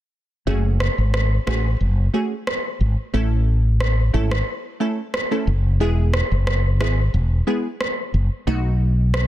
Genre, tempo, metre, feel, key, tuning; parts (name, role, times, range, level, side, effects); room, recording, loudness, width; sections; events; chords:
dancehall; 90 BPM; 4/4; straight; F# dorian; A4 = 441 Hz
wavetable chord stab; accompaniment; 0.5-9.1 s; G#3 to A4; -25 LUFS; right 1 dB
mellow fretless electric bass; bass; 0.5-9.3 s; E1 to B1; -18 LUFS; equal
electronic rim click; drums; 0.8-9.3 s; -25 LUFS; equal; soft clipping on snare
little or no reverb; dense, heavily limited modern master; -18 LUFS; side -13 dB against mid
0.5-9.3 A section
kick muted 0.5-9.3
0.5 F#madd9; 3.1 A; 5.8 E; 8.5 B7